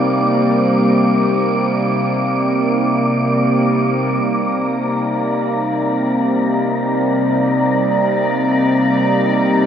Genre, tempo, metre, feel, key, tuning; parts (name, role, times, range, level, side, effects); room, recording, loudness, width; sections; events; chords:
ambient; free time; C minor; A4 = 440 Hz
evolving wavetable pad; sustained chords; 0.0-9.7 s; C3 to D5; -16 LUFS; right 1 dB; chorus, built-in reverb
analog drone; drone; 0.0-9.7 s; C3 to C4; -20 LUFS; equal; chorus
wind-like tuned noise texture; texture; 0.0-9.7 s; Bb5 to D6; -22 LUFS; left 2 dB; built-in reverb
wet huge ambient reverb, RT60 8.0 s; -14 LUFS; side -8 dB against mid
0.0-4.2 A section; 4.2-9.7 B section
0.0 Cm7